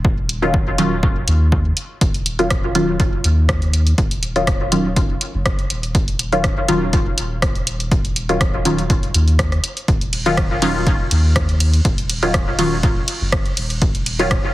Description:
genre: dub techno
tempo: 122 BPM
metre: 4/4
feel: swing 53% on 16ths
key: Eb minor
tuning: A4 = 440 Hz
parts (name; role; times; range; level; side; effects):
- soft dub sub bass; bass; 0.0-14.4 s; Eb1 to Eb2; -20 LUFS; equal; sidechain pumping
- electronic kick drum; drums; 0.0-14.4 s; none; -18 LUFS; equal; none
- punchy analog drum machine; drums; 0.3-14.4 s; hi-hat, ride cymbal, rim click; -23 LUFS; right 1 dB; none
- filtered dub chord stab; stabs; 0.4-14.4 s; Eb3 to F4; -19 LUFS; equal; chorus, phaser, sidechain pumping, dub echo
room: light reverb, digital ambience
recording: heavily compressed radio sound, multiband compression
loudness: -15 LUFS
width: side -16 dB against mid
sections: 0.0-2.0 A section; 2.0-14.5 A section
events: none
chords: 0.0 Ebm9

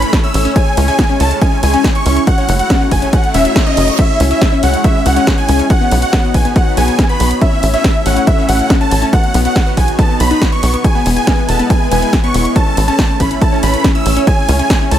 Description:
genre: uplifting trance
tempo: 140 BPM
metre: 4/4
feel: straight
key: C# minor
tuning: A4 = 439 Hz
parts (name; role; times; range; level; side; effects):
- supersaw chords; melody; 0.0-15.0 s; D#5 to E6; -17 LUFS; right 1 dB; cassette tape, sidechain pumping, digital delay
- lush unison pad; sustained chords; 0.0-15.0 s; G#3 to C#5; -20 LUFS; equal; chorus, phaser, sidechain pumping
- tight sequencer bass; bass; 0.0-15.0 s; E1 to C#2; -14 LUFS; equal; sidechain pumping
- punchy analog drum machine; drums; 0.0-15.0 s; crash cymbal, hi-hat, ride cymbal, snare drum; -20 LUFS; equal; overdrive, sidechain pumping on hats, sidechain pumping on cymbals
- wide unison pluck; arpeggios; 0.1-15.0 s; B3 to D#4; -20 LUFS; left 4 dB; sidechain pumping, dub echo
- electronic kick drum; drums; 0.1-14.8 s; none; -13 LUFS; equal; overdrive
- reverse cymbal; sound effects; 3.3-4.0 s; none; -24 LUFS; right 6 dB; none
room: little or no reverb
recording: none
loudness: -10 LUFS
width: side -10 dB against mid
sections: 0.0-15.0 A section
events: reverse cymbal 3.3-4.0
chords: 0.0 A; 0.6 C#m; 2.3 F#m7; 4.0 C#m; 5.7 Badd9; 7.4 A; 9.1 Badd9; 10.8 E; 12.6 A; 14.3 C#m

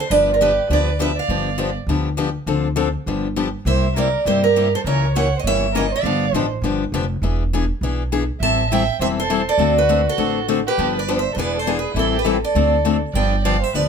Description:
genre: acoustic string swing (jazz manouche)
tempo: 202 BPM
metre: 4/4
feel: swing 60% on 8ths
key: G mixolydian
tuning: A4 = 441 Hz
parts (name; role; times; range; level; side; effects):
- picked steel-string acoustic guitar; melody; 0.0-13.9 s; A4 to A5; -20 LUFS; right 2 dB; none
- warm violin; second line; 0.0-13.9 s; E4 to E5; -25 LUFS; right 8 dB; none
- picked steel-string acoustic guitar; accompaniment; 0.1-13.9 s; C3 to A4; -22 LUFS; left 7 dB; none
- upright bass; bass; 0.1-13.9 s; E1 to G2; -22 LUFS; right 1 dB; none
room: light reverb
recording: close, detailed microphones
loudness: -17 LUFS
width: side -6 dB against mid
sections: 0.0-13.1 A section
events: none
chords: 0.0 G7; 2.5 Dm7; 3.1 G7; 3.7 C7; 4.9 C#dim7; 6.0 G7; 7.2 E7; 8.4 Am7; 9.6 D7; 10.8 G7; 11.4 E7; 12.0 Am7; 12.6 D7; 13.1 G7

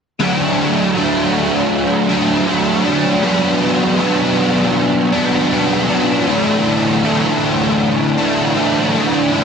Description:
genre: rock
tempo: 79 BPM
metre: 4/4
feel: straight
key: unclear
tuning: A4 = 440 Hz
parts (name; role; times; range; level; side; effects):
- biting overdriven guitar; solo; 0.2-9.4 s; A2 to D4; -13 LUFS; equal; analog chorus
room: moderate concert hall reverb, RT60 2.3 s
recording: dense, heavily limited modern master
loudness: -13 LUFS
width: side -6 dB against mid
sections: 0.2-9.4 A section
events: none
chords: 0.2 D; 3.2 Bm; 6.3 Asus4

